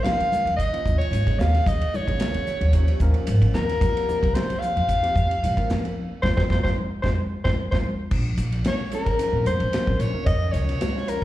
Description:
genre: electric jazz fusion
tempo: 112 BPM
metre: 4/4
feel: swing 54% on 16ths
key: F minor, Bb minor from 8.1 s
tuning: A4 = 440 Hz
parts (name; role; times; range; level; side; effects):
- mellow soprano saxophone; melody; 0.0-11.2 s; Bb4 to F5; -26 LUFS; equal; slapback echo
- tine electric piano; accompaniment; 0.0-11.2 s; F3 to Bb4; -32 LUFS; left 1 dB; medium stereo tremolo, slapback echo
- upright bass; bass; 0.0-10.7 s; Bb1 to F3; -23 LUFS; equal; none
- congas; percussion; 0.0-10.9 s; none; -32 LUFS; left 1 dB; slapback echo
- modern studio drum kit; drums; 0.1-11.2 s; crash cymbal, hi-hat, kick drum, ride cymbal, snare drum; -26 LUFS; equal; none
room: light reverb, small room ambience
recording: live gig heard through the venue's PA, club reverb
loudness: -20 LUFS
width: side -14 dB against mid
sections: 0.0-8.1 A section; 8.1-11.2 B section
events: band accent 6.0-8.1; drum fill 7.8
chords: 0.0 Eb9sus4; 3.8 F9sus4; 8.1 Bbmadd9

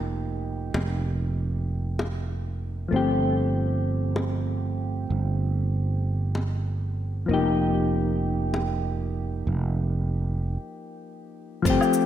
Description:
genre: sunset chillout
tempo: 110 BPM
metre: 4/4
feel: swing 57% on 16ths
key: unclear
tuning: A4 = 439 Hz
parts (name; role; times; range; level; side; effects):
- soft electric-piano-like synth keys; accompaniment; 0.0-12.1 s; F3 to G4; -28 LUFS; moving between left 4 dB and right 7 dB; chorus, auto-pan, digital delay
- sustaining fretless electric bass; bass; 0.0-11.8 s; F1 to G1; -26 LUFS; right 2 dB; none
- bongos; percussion; 0.7-8.6 s; none; -34 LUFS; left 2 dB; none
- cabasa, crash cymbal and woodblock; drums; 11.7-12.1 s; none; -29 LUFS; equal; none
- electronic kick drum; drums; 11.7-11.8 s; none; -27 LUFS; right 2 dB; overdrive
room: light reverb, small room ambience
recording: bright 1980s-style digital production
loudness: -24 LUFS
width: side -11 dB against mid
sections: 0.0-11.7 A section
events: break 10.6-11.7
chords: 0.0 F9sus4; 2.9 G9sus4; 7.3 F9sus4

